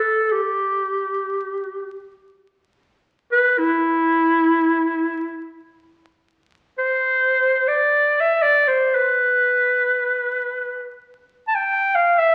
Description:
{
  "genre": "Turkish makam ensemble",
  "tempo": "free time",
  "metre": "none",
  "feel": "none",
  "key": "E makam kurdi",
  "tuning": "A4 = 440 Hz",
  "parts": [
    { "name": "breathy clarinet", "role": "solo", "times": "0.0-12.3 s", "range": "E4 to A5", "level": "-19 LUFS", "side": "equal", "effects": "none" }
  ],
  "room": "wet large studio reverb, RT60 1.4 s",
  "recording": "very old 78 rpm record, vinyl crackle",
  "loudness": "-19 LUFS",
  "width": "mono",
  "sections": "0.0-6.2 A section; 6.2-12.3 A section",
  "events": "none",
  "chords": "none",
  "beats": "free time"
}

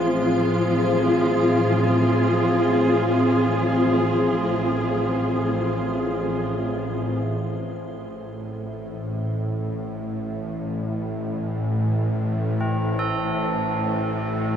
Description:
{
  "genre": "dark ambient drone",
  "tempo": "free time",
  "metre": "none",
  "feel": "none",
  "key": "A harmonic minor",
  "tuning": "A4 = 439 Hz",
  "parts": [
    { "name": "muted studio cello section", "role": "sustained chords", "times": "0.0-7.2 s", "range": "F3 to Ab4", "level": "-21 LUFS", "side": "equal", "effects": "none" },
    { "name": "tubular bells", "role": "arpeggios", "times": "0.0-14.6 s", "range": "C4 to A4", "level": "-31 LUFS", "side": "right 3 dB", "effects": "analog delay" },
    { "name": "bowed-like drone", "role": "drone", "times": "0.0-14.6 s", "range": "A1 to A2", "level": "-25 LUFS", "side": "equal", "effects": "built-in reverb" },
    { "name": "icy glass pad", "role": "texture", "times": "0.0-7.2 s", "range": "C5", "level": "-33 LUFS", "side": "left 1 dB", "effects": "chorus, built-in reverb" }
  ],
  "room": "wet huge ambient reverb, RT60 7.1 s",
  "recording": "dreamy mix soaked in reverb",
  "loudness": "-20 LUFS",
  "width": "side -8 dB against mid",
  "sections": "0.0-7.2 A section; 7.2-14.6 B section",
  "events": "none",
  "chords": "0.0 Fm; 7.2 Am",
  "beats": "free time"
}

